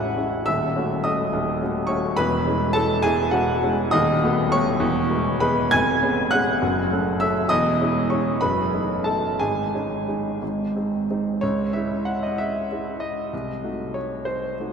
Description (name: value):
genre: classical, romantic character piece for solo piano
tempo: 59-71 BPM (dotted quarters)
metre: 6/8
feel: rubato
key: C# minor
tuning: A4 = 437 Hz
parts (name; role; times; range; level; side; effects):
- warm grand piano; solo; 0.0-14.7 s; A0 to G#6; -20 LUFS; equal; none
room: wet cathedral reverb, RT60 4.6 s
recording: none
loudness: -20 LUFS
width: side -6 dB against mid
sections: 0.0-11.4 A section; 11.4-14.7 B section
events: none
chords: 0.5 D#m7b5; 2.2 C#m/E; 3.9 B7/D#; 4.8 E; 5.7 C#7/E#; 6.6 F#m; 7.5 C#m/E; 8.4 D#dim/F#; 9.4 G#sus4; 10.4 G#; 11.4 C#m; 13.3 Cdim7